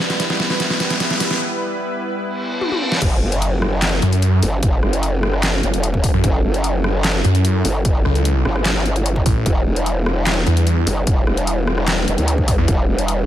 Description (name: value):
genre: heavy wobble dubstep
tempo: 149 BPM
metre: 4/4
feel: half-time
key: F# phrygian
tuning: A4 = 444 Hz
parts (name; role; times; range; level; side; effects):
- supersaw pad; sustained chords; 0.0-13.3 s; F#3 to B4; -25 LUFS; equal; sidechain pumping, low-pass filter
- dubstep drum kit; drums; 0.0-13.2 s; crash cymbal, handclaps, hi-hat, rim click, snare drum, toms; -22 LUFS; equal; none
- riser, reverse cymbal and impact; sound effects; 0.0-4.6 s; none; -25 LUFS; equal; none
- growl bass; bass; 3.0-13.3 s; E1 to D2; -19 LUFS; equal; chorus, overdrive
- electronic kick drum; drums; 3.0-12.8 s; none; -18 LUFS; equal; none
- snarling distorted saw bass; bass; 4.0-12.7 s; A1 to F#2; -15 LUFS; equal; distortion, overdrive
room: digital ambience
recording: none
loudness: -16 LUFS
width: side -12 dB against mid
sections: 0.0-3.0 A section; 3.0-13.3 B section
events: build-up 0.0-3.0; drum fill 0.0-1.4, 2.6-3.0; riser 0.0-1.4; filter sweep on supersaw synth 0.0-3.0; break 1.4-3.0; reverse cymbal 2.4-3.0; drop 3.0-13.3; impact 3.0-4.6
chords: 0.0 Em; 3.0 F#m7; 9.5 Em7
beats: 0.20 0.60 1.00 | 1.41 1.81 2.21 2.61 | 3.02 3.42 3.82 4.22 | 4.63 5.03 5.43 5.83 | 6.24 6.64 7.04 7.45 | 7.85 8.25 8.65 9.06 | 9.46 9.86 10.27 10.67 | 11.07 11.47 11.88 12.28 | 12.68 13.08